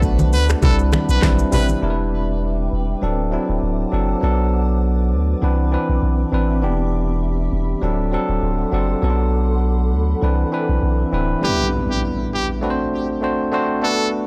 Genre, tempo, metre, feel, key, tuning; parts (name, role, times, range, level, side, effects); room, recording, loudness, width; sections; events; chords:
afrobeats; 100 BPM; 4/4; swing 55% on 16ths; E minor; A4 = 440 Hz
bell-like tine electric piano; accompaniment; 0.0-14.3 s; E3 to C5; -24 LUFS; equal
granular cloud pad; sustained chords; 0.0-11.4 s; C4 to D6; -33 LUFS; equal; built-in reverb
punchy sub bass; bass; 0.0-11.3 s; D1 to D2; -21 LUFS; equal
afro-pop drum kit; drums; 0.0-1.8 s; finger snaps, handclaps, hi-hat, kick drum, rim click, shaker; -23 LUFS; equal
congas; percussion; 0.2-1.8 s; -25 LUFS; equal
brilliant trumpet; melody; 0.3-1.7, 11.4-14.1 s; G4 to B4; -27 LUFS; equal; tape echo
impact; sound effects; 11.4-13.8 s; -29 LUFS; equal
digital ambience; dry, gritty hardware recording; -19 LUFS; mono
0.0-1.8 A section; 1.8-11.4 B section; 11.4-14.3 A section
impact 11.4-13.8
0.0 Bm7; 0.6 Cmaj9; 1.8 Em7; 3.0 D7; 4.2 Bm7; 5.4 Cmaj9; 6.6 Em7; 7.8 D7; 9.0 Bm7; 10.2 Cmaj9; 11.4 Em7; 12.6 D7